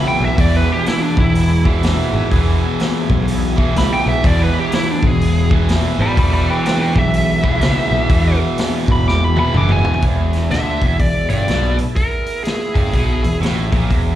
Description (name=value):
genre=blues rock power trio and southern rock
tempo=124 BPM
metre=4/4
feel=swing 63% on 8ths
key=E mixolydian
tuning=A4 = 440 Hz
part: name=smooth overdriven lead guitar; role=melody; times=0.0-13.4 s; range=D4 to D6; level=-21 LUFS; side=equal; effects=slapback echo, digital delay
part: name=overdriven tonewheel organ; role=sustained chords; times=0.0-14.2 s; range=G#3 to F5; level=-28 LUFS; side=right 4 dB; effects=chorus vibrato, slow rotary speaker
part: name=cranked stack guitar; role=riff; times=0.0-14.2 s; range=E2 to E3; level=-20 LUFS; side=equal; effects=overdrive, slapback echo
part: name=fuzz picked electric bass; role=bass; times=0.2-14.2 s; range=E1 to E2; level=-17 LUFS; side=equal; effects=overdrive
part: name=vintage drum kit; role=drums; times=0.4-14.0 s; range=hi-hat, kick drum, snare drum, toms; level=-19 LUFS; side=equal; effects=none
room=little or no reverb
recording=live gig heard through the venue's PA, club reverb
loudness=-13 LUFS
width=side -12 dB against mid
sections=0.0-10.0 A section; 10.0-14.2 B section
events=lead electric guitar solo 0.0-10.0; drum fill 9.1-10.0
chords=0.0 E